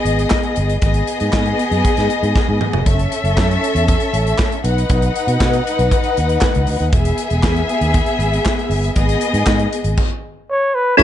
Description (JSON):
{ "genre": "disco", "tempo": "118 BPM", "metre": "4/4", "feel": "straight", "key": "unclear", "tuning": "A4 = 440 Hz", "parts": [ { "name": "warm studio string section", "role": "second line", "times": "0.0-11.0 s", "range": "B3 to F#5", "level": "-18 LUFS", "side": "left 2 dB", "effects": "none" }, { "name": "fingered electric bass", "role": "bass", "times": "0.1-11.0 s", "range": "E1 to B2", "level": "-18 LUFS", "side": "equal", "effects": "none" }, { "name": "modern studio drum kit", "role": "drums", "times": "0.1-11.0 s", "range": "crash cymbal, handclaps, hi-hat, kick drum, snare drum, toms", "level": "-19 LUFS", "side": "equal", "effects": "none" }, { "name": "breathy flugelhorn", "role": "melody", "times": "10.5-11.0 s", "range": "B4 to C#5", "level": "-14 LUFS", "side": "equal", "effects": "none" }, { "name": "percussive tonewheel organ", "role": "sustained chords", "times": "11.0 s", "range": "F#3 to G#5", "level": "-5 LUFS", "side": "equal", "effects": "chorus vibrato, fast rotary speaker" } ], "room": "small room ambience", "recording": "nothing above 10.6 kHz, faint mains hum", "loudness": "-14 LUFS", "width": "side -11 dB against mid", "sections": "0.0-11.0 A section", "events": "drum fill 2.4-2.9", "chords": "0.0 Emaj7 (rootless); 0.8 G#m; 2.9 F#m7; 4.6 B; 6.9 Emaj7; 9.0 G#m; 10.0 N.C.", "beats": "0.32 | 0.83 1.34 1.85 2.36 | 2.87 3.38 3.88 4.39 | 4.90 5.41 5.92 6.42 | 6.93 7.44 7.95 8.46 | 8.96 9.47 9.98 10.48 | 10.99" }